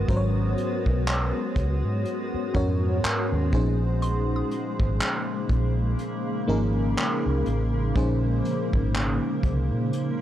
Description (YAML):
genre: contemporary R&B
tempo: 61 BPM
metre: 4/4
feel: swing 58% on 16ths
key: unclear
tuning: A4 = 440 Hz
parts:
  - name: FM electric piano with soft pad layer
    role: accompaniment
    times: 0.0-10.2 s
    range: G#2 to C#5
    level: -28 LUFS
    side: equal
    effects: chorus
  - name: granular cloud pad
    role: sustained chords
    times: 0.0-10.2 s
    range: C#3 to F#4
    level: -30 LUFS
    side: equal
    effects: built-in reverb
  - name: vintage muted fingered electric bass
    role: bass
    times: 0.0-9.9 s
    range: G#1 to A#2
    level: -25 LUFS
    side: equal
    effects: none
  - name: vintage brush drum kit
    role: drums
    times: 0.1-10.2 s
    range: handclaps, hi-hat, kick drum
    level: -27 LUFS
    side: equal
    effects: none
  - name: mallet-like synth pluck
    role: texture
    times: 4.0-5.4 s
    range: B#5 to D#6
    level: -39 LUFS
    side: equal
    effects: chorus, phaser, tape echo
room: small room ambience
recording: dry, gritty hardware recording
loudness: -22 LUFS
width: side -12 dB against mid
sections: 0.0-10.2 A section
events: kick muted 9.9; FM electric piano fill 9.9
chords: 0.0 G#m11; 3.5 A#m11